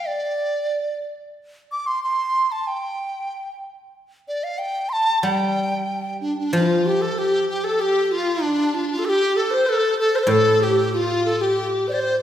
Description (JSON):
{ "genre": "chinese traditional, Chinese chamber ensemble", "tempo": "94 BPM", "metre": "2/4", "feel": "rubato", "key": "G shang mode", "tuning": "A4 = 438 Hz", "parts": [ { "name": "hollow large dizi", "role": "melody", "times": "0.0-12.2 s", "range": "D4 to D6", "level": "-21 LUFS", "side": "equal", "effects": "none" }, { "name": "guzheng", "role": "accompaniment", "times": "5.2-12.2 s", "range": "A2 to G3", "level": "-23 LUFS", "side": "equal", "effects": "none" }, { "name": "hollow large dizi", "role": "second line", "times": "6.2-12.2 s", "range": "D4 to D5", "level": "-22 LUFS", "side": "left 1 dB", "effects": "none" } ], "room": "wet scoring stage reverb, RT60 1.8 s", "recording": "recorded in a church or concert hall", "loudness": "-19 LUFS", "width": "side -10 dB against mid", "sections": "0.0-6.5 A section; 6.5-12.2 B section", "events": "none", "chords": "none", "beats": "| 0.06 0.71 | 1.37 2.03 | 2.68 3.32 | 3.96 4.60 | 5.25 5.90 | 6.54 7.17 | 7.80 8.42 | 9.05 9.67 | 10.29 10.92 | 11.55 12.19" }